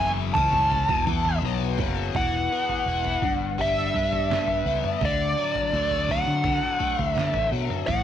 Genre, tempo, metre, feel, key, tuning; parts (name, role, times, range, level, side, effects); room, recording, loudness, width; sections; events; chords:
psychedelic rock; 84 BPM; 4/4; straight; A4 = 438 Hz
dark smooth lead guitar; melody; 0.0-8.0 s; D5 to A5; -25 LUFS; right 1 dB; wah, overdrive, slapback echo
biting overdriven guitar; riff; 0.0-8.0 s; E2 to E4; -29 LUFS; left 12 dB; flanger
fingered electric bass; bass; 0.0-8.0 s; E1 to D3; -28 LUFS; right 1 dB
tanpura; drone; 0.0-8.0 s; E2 to E3; -39 LUFS; right 1 dB
trip hop sampler-style drum kit; drums; 0.3-8.0 s; kick drum, snare drum, toms; -31 LUFS; right 3 dB
congas; percussion; 0.4-1.9 s; -38 LUFS; right 8 dB
light reverb; 1960s-style stereo with parts hard left and right; -22 LUFS; side -10 dB against mid
0.0-2.1 A section; 2.1-8.0 B section
break 1.4-2.1
0.0 F#madd9; 2.1 Esus2; 3.2 G; 5.0 D